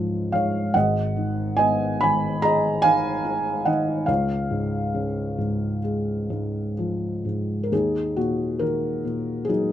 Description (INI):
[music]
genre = classical, lyrical solo piano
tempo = 61-73 BPM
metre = 4/4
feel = rubato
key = Eb minor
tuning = A4 = 441 Hz
[part]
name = felt-muted upright piano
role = solo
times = 0.0-9.7 s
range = Ab1 to Cb6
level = -21 LUFS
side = equal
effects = none
[sound]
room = light reverb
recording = nothing above 10.8 kHz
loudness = -21 LUFS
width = side -11 dB against mid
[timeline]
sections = 0.0-7.7 A section; 7.7-9.7 B section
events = none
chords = 0.0 Db; 0.8 Abm; 4.1 Db; 7.7 Ebm